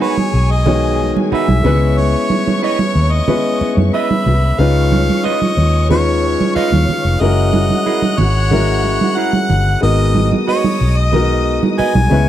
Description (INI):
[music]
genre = lush 1970s-style soul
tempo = 92 BPM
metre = 4/4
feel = straight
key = G# minor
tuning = A4 = 440 Hz
[part]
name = bright harmonica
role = melody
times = 0.0-12.3 s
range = C#5 to G#5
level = -20 LUFS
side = equal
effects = tape echo
[part]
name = warm studio string section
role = second line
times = 0.0-12.3 s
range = G#4 to F#6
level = -26 LUFS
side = left 2 dB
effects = none
[part]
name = clear concert grand piano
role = accompaniment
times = 0.0-12.3 s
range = D#3 to C#5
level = -18 LUFS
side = left 3 dB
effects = none
[part]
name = clean electric guitar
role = riff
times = 0.0-11.9 s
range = D#4 to D#5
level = -21 LUFS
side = right 11 dB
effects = none
[part]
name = congas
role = percussion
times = 0.0-12.3 s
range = none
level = -19 LUFS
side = right 5 dB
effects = none
[part]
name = vintage muted fingered electric bass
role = bass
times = 0.3-12.3 s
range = E#1 to F#2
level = -14 LUFS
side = equal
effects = none
[sound]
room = little or no reverb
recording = dry, close 1970s-style studio recording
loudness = -12 LUFS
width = side -11 dB against mid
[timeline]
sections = 0.0-12.3 A section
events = none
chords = 0.0 G#m7; 1.6 C#m9; 4.6 C#9; 7.2 F#9; 9.8 G#m7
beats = 0.00 0.66 1.31 | 1.97 2.63 3.28 3.94 | 4.59 5.25 5.90 6.55 | 7.21 7.86 8.52 9.17 | 9.82 10.48 11.13 11.78